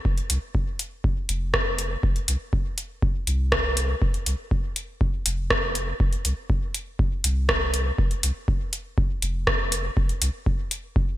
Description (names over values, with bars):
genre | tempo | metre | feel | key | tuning
dub techno | 121 BPM | 4/4 | straight | unclear | A4 = 440 Hz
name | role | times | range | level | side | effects
soft dub sub bass | bass | 0.1-10.3 s | F1 to C2 | -26 LUFS | equal | sidechain pumping
electronic kick drum | drums | 0.1-11.1 s | none | -24 LUFS | equal | none
booming analog drum machine | drums | 0.2-10.8 s | hi-hat, rim click | -25 LUFS | equal | gated reverb, dub echo
room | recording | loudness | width
light reverb | bright 1980s-style digital production | -22 LUFS | side -14 dB against mid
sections
0.0-11.2 A section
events
none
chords
none